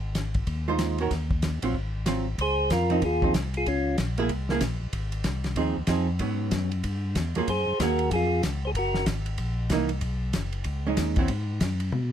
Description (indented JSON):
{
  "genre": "soul jazz organ trio",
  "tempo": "189 BPM",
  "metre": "4/4",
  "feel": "swing 62% on 8ths",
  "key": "Db major",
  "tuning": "A4 = 443 Hz",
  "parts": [
    { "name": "tonewheel organ", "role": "bass", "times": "0.0-12.1 s", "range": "Gb1 to B2", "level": "-28 LUFS", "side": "left 1 dB", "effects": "slow rotary speaker" },
    { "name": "warm soul drum kit", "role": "drums", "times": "0.1-12.0 s", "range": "hi-hat, kick drum, ride cymbal, snare drum, toms", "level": "-30 LUFS", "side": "left 1 dB", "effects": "none" },
    { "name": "archtop guitar, miked and amplified", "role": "accompaniment", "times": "0.7-11.3 s", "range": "Eb3 to C5", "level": "-28 LUFS", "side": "right 5 dB", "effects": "none" },
    { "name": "percussive tonewheel organ", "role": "melody", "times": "2.4-4.0, 7.5-9.1 s", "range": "Db4 to C5", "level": "-25 LUFS", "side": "equal", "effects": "slow rotary speaker" }
  ],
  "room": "light reverb",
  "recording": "none",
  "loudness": "-24 LUFS",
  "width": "side -9 dB against mid",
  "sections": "0.0-2.4 A section; 2.4-12.1 B section",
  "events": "drum fill 11.9",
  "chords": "0.0 Ab6; 1.1 Ebm; 1.8 Ab6; 2.4 Dbmaj9; 3.7 Bbm7; 4.3 Caug7; 4.9 Fm7; 6.2 Abm7; 6.8 Edim; 7.5 Gbmaj9; 8.8 Gb13; 10.0 Cb69; 11.3 Abm7"
}